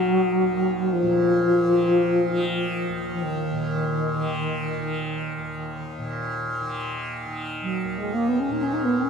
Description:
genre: world meditative, free-time meditation music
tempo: free time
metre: none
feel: none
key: Eb minor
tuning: A4 = 440 Hz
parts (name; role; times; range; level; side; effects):
- mellow bass flute; melody; 0.0-9.1 s; Eb3 to Eb4; -22 LUFS; equal; tape echo
- tanpura; drone; 0.0-9.1 s; Eb2 to Eb3; -29 LUFS; left 1 dB; none
room: wet cathedral reverb, RT60 5.9 s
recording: none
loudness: -22 LUFS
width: side -6 dB against mid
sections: 0.0-9.1 A section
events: none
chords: none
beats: free time

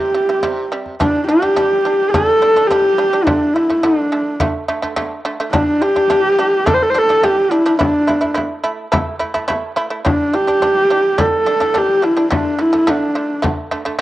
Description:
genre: mongolian traditional, Mongolian folk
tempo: 106 BPM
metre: 4/4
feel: straight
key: G zhi mode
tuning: A4 = 440 Hz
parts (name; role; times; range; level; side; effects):
- warm horsehead fiddle; melody; 0.0-13.5 s; D4 to C5; -13 LUFS; equal; cassette tape
- shamisen; arpeggios; 0.0-14.0 s; C3 to E4; -21 LUFS; right 2 dB; cassette tape
- frame drum; percussion; 0.4-13.9 s; none; -21 LUFS; left 1 dB; none
room: wet spring reverb, RT60 1.2 s, small room ambience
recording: home recording on cassette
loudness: -13 LUFS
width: side -15 dB against mid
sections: 0.0-1.0 A section; 1.0-14.0 B section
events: none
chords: 0.0 C5; 1.0 G5; 3.3 D5; 5.5 G5; 7.8 A5; 10.1 G5; 12.3 D5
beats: 0.43 | 1.00 1.57 2.14 2.70 | 3.27 3.84 4.40 4.97 | 5.53 6.10 6.67 7.23 | 7.80 8.36 8.93 9.49 | 10.06 10.62 11.19 11.75 | 12.31 12.88 13.44 14.01

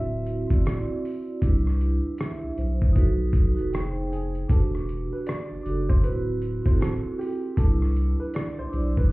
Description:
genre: lo-fi hip hop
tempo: 78 BPM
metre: 4/4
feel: swing 62% on 16ths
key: unclear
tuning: A4 = 440 Hz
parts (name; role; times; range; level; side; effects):
- warm upright piano; melody; 0.0-9.1 s; G4 to E5; -37 LUFS; equal; low-pass filter, plate reverb
- vibraphone with soft mallets; accompaniment; 0.0-9.1 s; C4 to G5; -30 LUFS; right 2 dB; cassette tape, low-pass filter, plate reverb
- warm sub bass; bass; 0.0-9.1 s; D1 to C2; -25 LUFS; equal; none
- trip hop sampler-style drum kit; drums; 0.3-9.1 s; hi-hat, kick drum, rim click; -23 LUFS; equal; none
room: little or no reverb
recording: heard muffled through a wall, club reverb, vinyl crackle, EQ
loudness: -22 LUFS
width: side -21 dB against mid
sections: 0.0-4.5 A section; 4.5-9.1 B section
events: none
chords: 0.0 D13; 1.4 Cmaj7; 3.0 B7; 3.7 Fm9; 4.5 Em9; 6.0 D13; 7.6 Cmaj7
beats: 0.65 | 1.42 2.19 2.96 3.73 | 4.50 5.26 6.03 6.80 | 7.57 8.34 9.11

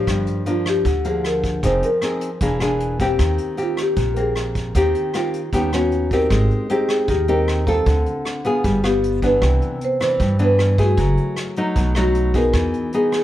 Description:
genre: bossa nova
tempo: 154 BPM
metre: 4/4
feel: straight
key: Eb major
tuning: A4 = 440 Hz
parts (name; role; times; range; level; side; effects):
- marimba with soft mallets; melody; 0.0-13.2 s; Eb4 to C5; -21 LUFS; left 1 dB; none
- nylon-string guitar; accompaniment; 0.0-13.2 s; G2 to A4; -22 LUFS; left 1 dB; none
- upright bass; bass; 0.0-12.7 s; E1 to G2; -21 LUFS; right 1 dB; none
- vintage brush drum kit; drums; 0.1-13.2 s; hi-hat, kick drum, rim click; -27 LUFS; right 1 dB; none
room: light reverb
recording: none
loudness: -17 LUFS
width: side -13 dB against mid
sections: 0.0-6.3 A section; 6.3-13.2 B section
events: none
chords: 0.1 Gm7; 1.6 Fm7; 2.4 E7#11; 3.2 Eb6; 5.5 Eb7alt; 6.3 Abmaj7; 7.9 Dm7; 8.6 G7b9; 9.4 Cmaj9; 11.0 Gbm9; 11.8 B7; 12.5 Emaj7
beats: | 0.08 0.47 0.86 1.25 | 1.64 2.03 2.42 2.81 | 3.19 3.58 3.97 4.36 | 4.75 5.14 5.53 5.92 | 6.31 6.70 7.09 7.48 | 7.87 8.26 8.65 9.04 | 9.43 9.81 10.21 10.59 | 10.98 11.37 11.76 12.15 | 12.54 12.93

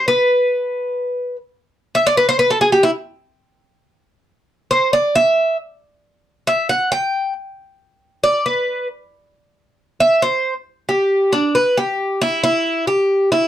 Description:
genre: latin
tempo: 136 BPM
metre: 4/4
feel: straight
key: G major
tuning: A4 = 440 Hz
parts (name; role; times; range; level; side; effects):
- Cuban tres; solo; 0.0-13.5 s; D4 to G5; -14 LUFS; equal; none
room: moderate studio ambience, RT60 0.5 s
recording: dark, warm production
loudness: -15 LUFS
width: side -11 dB against mid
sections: 0.0-10.7 A section; 10.7-13.5 B section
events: Cuban tres solo 0.0-10.7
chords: none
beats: | 0.07 0.52 0.96 1.40 | 1.84 2.28 2.72 3.16 | 3.60 4.04 4.49 4.93 | 5.37 5.81 6.25 6.69 | 7.13 7.58 8.02 8.46 | 8.90 9.34 9.78 10.22 | 10.67 11.11 11.55 11.99 | 12.43 12.87 13.31

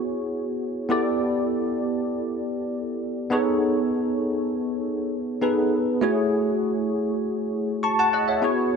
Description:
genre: pop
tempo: 100 BPM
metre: 4/4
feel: straight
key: F# dorian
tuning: A4 = 440 Hz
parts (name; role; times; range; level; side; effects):
- bell-like tine electric piano; solo; 0.0-8.8 s; A3 to C#6; -22 LUFS; equal; medium stereo tremolo, ensemble chorus
room: light reverb, digital ambience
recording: none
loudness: -22 LUFS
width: side -5 dB against mid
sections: 0.0-8.8 A section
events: none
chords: 0.0 E69; 0.9 G69; 3.3 B13; 6.0 F#m9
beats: 0.01 0.61 | 1.21 1.81 2.41 3.02 | 3.62 4.22 4.82 5.42 | 6.03 6.63 7.23 7.83 | 8.44

